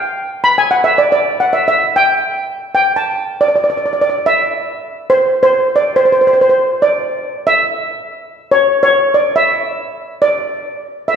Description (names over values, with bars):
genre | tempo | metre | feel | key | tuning
calypso | 141 BPM | 4/4 | straight | unclear | A4 = 440 Hz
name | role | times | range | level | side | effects
steel pan | solo | 0.4-11.1 s | C5 to B5 | -12 LUFS | equal | none
room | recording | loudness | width
wet concert hall reverb, RT60 2.1 s | heard from further back in the room | -11 LUFS | side -7 dB against mid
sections
0.0-3.4 A section; 3.4-11.2 B section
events
steel pan solo 0.0-3.4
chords
none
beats
| 0.01 0.43 0.86 1.28 | 1.71 2.13 2.56 2.98 | 3.41 3.83 4.26 4.68 | 5.11 5.53 5.96 6.38 | 6.81 7.24 7.66 8.09 | 8.51 8.94 9.37 9.79 | 10.22 10.64 11.07